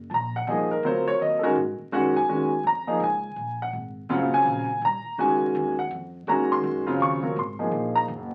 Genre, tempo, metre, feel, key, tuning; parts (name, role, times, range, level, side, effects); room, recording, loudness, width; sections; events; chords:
modal jazz; 166 BPM; 3/4; swing 63% on 8ths; Eb dorian; A4 = 440 Hz
upright bass; bass; 0.0-8.3 s; Eb1 to Ab2; -38 LUFS; equal
warm grand piano; accompaniment; 0.1-8.1 s; Db3 to Db6; -25 LUFS; equal
wet club reverb, RT60 0.6 s; very old 78 rpm record, vinyl crackle, nothing above 10.4 kHz; -25 LUFS; mono
0.0-8.3 A section
0.0 Ebm11